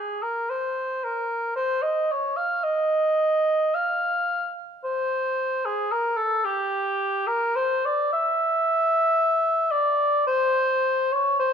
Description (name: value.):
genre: classical, free, expressive piece for unaccompanied cor anglais.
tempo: 55 BPM.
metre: 4/4.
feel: rubato.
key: unclear.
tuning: A4 = 440 Hz.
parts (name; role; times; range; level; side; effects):
mellow cor anglais; solo; 0.0-11.5 s; G4 to F5; -21 LUFS; equal; none.
room: moderate recital hall reverb, RT60 1.6 s.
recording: dark, warm production.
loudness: -21 LUFS.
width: side -7 dB against mid.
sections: 0.0-11.5 A section.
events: none.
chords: none.